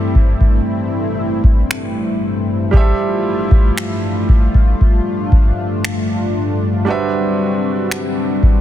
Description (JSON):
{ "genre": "contemporary R&B", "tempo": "58 BPM", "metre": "4/4", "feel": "straight", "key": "unclear", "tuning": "A4 = 442 Hz", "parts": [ { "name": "clear baby grand piano", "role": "accompaniment", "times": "0.0-8.6 s", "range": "G3 to E5", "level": "-23 LUFS", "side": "right 5 dB", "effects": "none" }, { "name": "chorused pulse-width pad", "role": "sustained chords", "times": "0.0-8.6 s", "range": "G2 to F#4", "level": "-18 LUFS", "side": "left 2 dB", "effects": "none" }, { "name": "booming analog drum machine", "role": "drums", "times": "0.2-8.6 s", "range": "finger snaps, kick drum", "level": "-12 LUFS", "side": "equal", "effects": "soft clipping on snare" } ], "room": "little or no reverb", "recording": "dense, heavily limited modern master", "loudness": "-13 LUFS", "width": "side -11 dB against mid", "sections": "0.0-8.6 A section", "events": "break 0.0-8.6", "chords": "0.0 C6/G; 2.7 Fmaj9/G; 6.9 D13/G" }